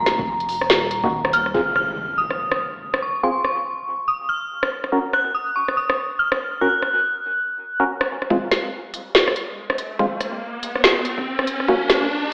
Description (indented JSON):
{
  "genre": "deep dubstep",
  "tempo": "142 BPM",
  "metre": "4/4",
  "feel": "swing 60% on 16ths, half-time",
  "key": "F phrygian",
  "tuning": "A4 = 440 Hz",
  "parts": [
    { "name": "dark detuned synth bell", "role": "melody", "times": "0.0-7.8 s", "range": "Bb5 to Gb6", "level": "-24 LUFS", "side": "equal", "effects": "chorus, phaser, dub echo" },
    { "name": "dark detuned saw bass", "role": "bass", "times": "0.0-1.5 s", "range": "Eb1 to F1", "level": "-35 LUFS", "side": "equal", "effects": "none" },
    { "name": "deep house drum kit", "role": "drums", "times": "0.1-12.0 s", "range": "hi-hat, rim click, snare drum", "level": "-22 LUFS", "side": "equal", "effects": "none" },
    { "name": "electronic kick drum", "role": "drums", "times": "0.2-1.1, 8.3-11.8 s", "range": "none", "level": "-31 LUFS", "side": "equal", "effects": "high-pass filter on kick" },
    { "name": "percussive organ stab", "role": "stabs", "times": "1.0-11.7 s", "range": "Ab3 to Bb4", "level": "-26 LUFS", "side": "equal", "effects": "chorus, phaser, cassette tape, dub echo" },
    { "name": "impact and riser", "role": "sound effects", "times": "1.5-3.2, 9.3-12.3 s", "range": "none", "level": "-30 LUFS", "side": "equal", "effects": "none" }
  ],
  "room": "wet spring reverb, RT60 1.5 s",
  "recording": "played on a big sound system in a bare room, stone room reverb, AM radio sound",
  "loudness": "-21 LUFS",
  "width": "mono",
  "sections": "0.0-1.5 A section; 1.5-8.3 B section; 8.3-12.3 C section",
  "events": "drop 0.0-1.5; impact 1.5-3.2; filter sweep on synth stab 1.5-8.3; build-up 8.3-12.3; riser 9.3-12.3",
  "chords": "0.0 Eb5; 1.5 Fm; 4.9 Gb; 8.3 Fm; 11.7 N.C."
}